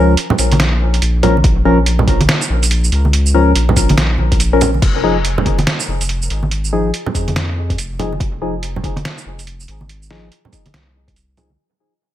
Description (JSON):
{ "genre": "deep dubstep", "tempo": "142 BPM", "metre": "4/4", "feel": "swing 61% on 16ths, half-time", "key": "F minor", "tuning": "A4 = 440 Hz", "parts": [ { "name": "percussive organ stab", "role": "stabs", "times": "0.0-11.5 s", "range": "F3 to Bb4", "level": "-18 LUFS", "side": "left 2 dB", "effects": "chorus, dub echo" }, { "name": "saturated sub bass", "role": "bass", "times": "0.0-11.6 s", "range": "F1 to F2", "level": "-16 LUFS", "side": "equal", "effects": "tube saturation" }, { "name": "trip hop sampler-style drum kit", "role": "drums", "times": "0.2-11.5 s", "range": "crash cymbal, hi-hat, shaker, snare drum", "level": "-19 LUFS", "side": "right 1 dB", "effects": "none" }, { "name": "congas", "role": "percussion", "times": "0.3-11.6 s", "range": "none", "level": "-19 LUFS", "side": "right 2 dB", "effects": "dub echo" }, { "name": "electronic kick drum", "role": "drums", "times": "1.4-11.1 s", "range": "none", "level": "-16 LUFS", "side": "equal", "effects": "overdrive" } ], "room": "light reverb", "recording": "none", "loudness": "-12 LUFS", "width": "side -12 dB against mid", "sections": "0.0-4.8 A section; 4.8-11.6 B section", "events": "drop 0.0-4.8; fade-out 4.8-11.6; filter sweep on synth stab 4.8-11.6", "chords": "0.0 Bbm; 4.8 Fm7" }